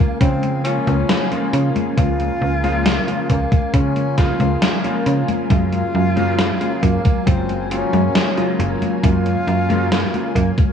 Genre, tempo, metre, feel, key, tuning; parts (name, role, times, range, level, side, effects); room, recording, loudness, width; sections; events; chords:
vaporwave; 68 BPM; 4/4; straight; Db major; A4 = 440 Hz
breathy tenor saxophone; melody; 0.0-10.5 s; Bb3 to F4; -24 LUFS; equal; tape echo
soft string machine; sustained chords; 0.0-10.7 s; Db3 to Ab5; -27 LUFS; left 1 dB; phaser, ensemble chorus
warm electric grand piano; accompaniment; 0.2-10.5 s; Db3 to F4; -23 LUFS; left 2 dB; analog chorus, analog delay
slap-like FM bass; bass; 0.2-10.5 s; Gb1 to Db3; -19 LUFS; right 1 dB
electronic kick drum; drums; 0.2-10.7 s; -16 LUFS; equal
gated 80s digital drum machine; drums; 0.2-10.7 s; congas, hi-hat, snare drum; -22 LUFS; left 1 dB; gated reverb, gated reverb snare
light reverb, digital ambience; cassette tape; -15 LUFS; side -8 dB against mid
0.0-10.7 A section
0.0 Db6; 5.5 Gbmaj9